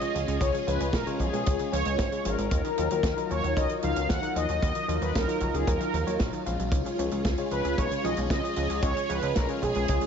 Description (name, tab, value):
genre	italo disco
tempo	114 BPM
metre	4/4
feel	straight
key	unclear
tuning	A4 = 437 Hz
part	mellow synth brass	melody	0.0-10.1 s	Ab4 to Gb5	-30 LUFS	equal	chorus, cassette tape, ping-pong delay
part	string machine, full ensemble	sustained chords	0.0-10.1 s	Gb3 to Ab4	-33 LUFS	right 1 dB	phaser, ensemble chorus
part	analog pluck	arpeggios	0.0-10.1 s	Db3 to Ab3	-38 LUFS	right 4 dB	chorus, ping-pong delay
part	tine electric piano	stabs	0.0-10.1 s	Gb3 to F5	-34 LUFS	left 6 dB	none
part	natural country drum kit	drums	0.0-10.1 s	hi-hat, snare drum	-36 LUFS	right 2 dB	none
part	chorused synth bass	bass	0.1-10.0 s	Ab1 to Eb2	-31 LUFS	equal	none
part	kick drum	drums	0.4-10.0 s	none	-30 LUFS	equal	none
room	studio reverb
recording	nothing above 7.6 kHz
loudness	-25 LUFS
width	side -7 dB against mid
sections	0.0-10.1 A section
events	none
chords	0.0 Db; 2.5 Ebmadd9; 6.7 Db